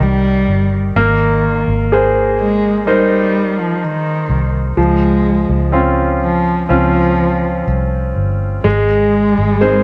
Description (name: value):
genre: pop ballad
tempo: 63 BPM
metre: 4/4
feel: straight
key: Ab major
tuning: A4 = 437 Hz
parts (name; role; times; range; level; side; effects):
- warm cello; melody; 0.0-9.8 s; Eb3 to Ab3; -19 LUFS; equal; cassette tape
- bright concert grand piano; accompaniment; 0.0-9.8 s; Eb3 to C5; -18 LUFS; equal; none
- vintage muted fingered electric bass; bass; 0.0-9.8 s; G1 to Db2; -20 LUFS; equal; none
- fingerpicked plugged-in steel-string acoustic guitar; arpeggios; 8.6-9.8 s; Ab3 to Bb4; -21 LUFS; equal; none
room: moderate spring reverb, RT60 1.8 s, studio reverb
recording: home recording on cassette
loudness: -14 LUFS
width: mono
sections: 0.0-9.8 A section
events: none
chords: 0.0 Eb; 1.0 Abadd9; 4.8 Dbmaj7; 8.7 Abadd9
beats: 0.01 | 0.96 1.91 2.87 3.82 | 4.78 5.74 6.70 7.68 | 8.65 9.62